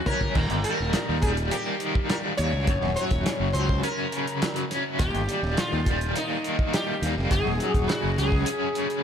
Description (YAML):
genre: psychedelic rock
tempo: 104 BPM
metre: 4/4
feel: straight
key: unclear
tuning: A4 = 442 Hz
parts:
  - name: sitar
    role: melody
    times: 0.0-9.0 s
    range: Eb4 to Db5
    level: -30 LUFS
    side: left 1 dB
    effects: slapback echo
  - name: biting overdriven guitar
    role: riff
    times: 0.0-9.0 s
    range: Eb2 to Db4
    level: -27 LUFS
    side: left 1 dB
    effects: tremolo
  - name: cloth-damped thuddy drum kit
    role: drums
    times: 0.1-9.0 s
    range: crash cymbal, hi-hat, kick drum, snare drum, toms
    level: -27 LUFS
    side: equal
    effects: none
  - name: fuzz fingered electric bass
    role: bass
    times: 0.4-8.4 s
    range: Eb1 to Eb2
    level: -28 LUFS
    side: equal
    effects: overdrive
room: studio reverb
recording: none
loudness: -23 LUFS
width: side -8 dB against mid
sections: 0.0-9.0 A section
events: drum fill 0.0-0.4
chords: 0.4 Eb; 2.7 Gb5; 5.0 Eb; 7.3 Gbsus2